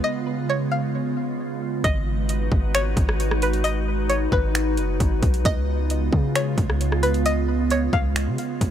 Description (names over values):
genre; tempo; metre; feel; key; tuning
hip hop, atmospheric cloud-rap; 133 BPM; 4/4; half-time; G# dorian; A4 = 440 Hz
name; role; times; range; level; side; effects
string-like resonator pluck; melody; 0.0-8.1 s; B4 to E#5; -27 LUFS; left 1 dB; chorus, tape echo
glassy FM pad; sustained chords; 0.0-8.7 s; C#3 to B4; -26 LUFS; right 2 dB; ensemble chorus, built-in reverb, sidechain pumping
long sustained 808-style bass; bass; 1.8-8.7 s; F#1 to C#3; -24 LUFS; equal; none
trap drum kit; drums; 1.8-8.7 s; finger snaps, hi-hat, kick drum, rim click; -23 LUFS; equal; none
room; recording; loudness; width
little or no reverb; none; -20 LUFS; side -10 dB against mid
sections
0.0-1.8 A section; 1.8-8.7 B section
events
break 0.0-1.8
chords
0.0 C#7; 1.8 G#m7; 5.5 C#7